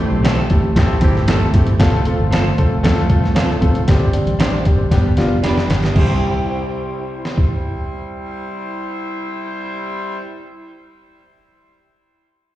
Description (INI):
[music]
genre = uptempo 1960s-style soul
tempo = 116 BPM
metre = 4/4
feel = straight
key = C major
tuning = A4 = 440 Hz
[part]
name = warm horn section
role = second line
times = 0.0-1.2, 6.0-10.2 s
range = E3 to C5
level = -28 LUFS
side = equal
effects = tape echo, slapback echo
[part]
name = warm grand piano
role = accompaniment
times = 0.0-10.2 s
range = G3 to C5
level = -21 LUFS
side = left 1 dB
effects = slapback echo
[part]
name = fingered electric bass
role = bass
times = 0.0-10.2 s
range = F1 to F2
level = -19 LUFS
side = equal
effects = none
[part]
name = electric guitar through a small old amp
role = stabs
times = 0.2-10.2 s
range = C4 to C5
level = -27 LUFS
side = right 4 dB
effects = ensemble chorus, tape echo, slapback echo
[part]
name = trip hop sampler-style drum kit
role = drums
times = 0.2-7.5 s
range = crash cymbal, hi-hat, kick drum, snare drum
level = -16 LUFS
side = equal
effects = none
[sound]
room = light reverb, small room ambience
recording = live gig heard through the venue's PA, cassette tape, recital hall reverb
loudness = -14 LUFS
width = side -14 dB against mid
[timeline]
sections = 0.0-6.0 A section; 6.0-10.1 B section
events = drum fill 4.9-6.0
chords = 0.0 Am7; 1.8 F; 3.9 Gsus4; 4.9 G; 6.0 C